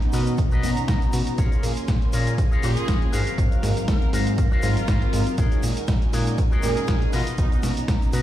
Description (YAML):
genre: filtered disco house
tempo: 120 BPM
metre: 4/4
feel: swing 55% on 16ths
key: unclear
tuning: A4 = 438 Hz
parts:
  - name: mellow synth brass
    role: accompaniment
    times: 0.0-8.2 s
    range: Gb3 to C6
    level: -29 LUFS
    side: right 1 dB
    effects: chorus, phaser, vintage 12-bit sampler grit, sidechain pumping
  - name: string machine, full ensemble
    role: sustained chords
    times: 0.0-8.2 s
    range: Gb3 to A#5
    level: -33 LUFS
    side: right 1 dB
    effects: ensemble chorus, sidechain pumping
  - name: dusty soul sampler-style drum kit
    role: drums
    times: 0.0-8.2 s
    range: hi-hat, snare drum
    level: -32 LUFS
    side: right 1 dB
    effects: overdrive, sidechain pumping on hats, sidechain pumping on cymbals
  - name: electric guitar with an envelope filter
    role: riff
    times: 0.1-8.2 s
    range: F#4 to F5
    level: -33 LUFS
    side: left 5 dB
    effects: vintage 12-bit sampler grit, sidechain pumping
  - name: fat analog bass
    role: bass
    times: 0.1-8.2 s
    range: Ab1 to B2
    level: -25 LUFS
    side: equal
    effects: sidechain pumping
  - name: tube shaker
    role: percussion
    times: 0.1-8.2 s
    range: none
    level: -42 LUFS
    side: left 3 dB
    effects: sidechain pumping on perc
  - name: electronic kick drum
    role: drums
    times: 0.4-8.0 s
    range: none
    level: -22 LUFS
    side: equal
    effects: none
  - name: bright horn section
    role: melody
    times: 2.6-7.6 s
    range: D#4 to Bb4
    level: -35 LUFS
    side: left 2 dB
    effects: sidechain pumping, ping-pong delay
room: little or no reverb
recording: played on a big sound system in a bare room, large studio reverb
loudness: -19 LUFS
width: side -13 dB against mid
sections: 0.0-8.2 A section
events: none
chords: 0.0 Bmaj7; 1.4 Bbm7; 3.1 Ab13; 5.4 Gb69/Bb; 7.1 Bmaj7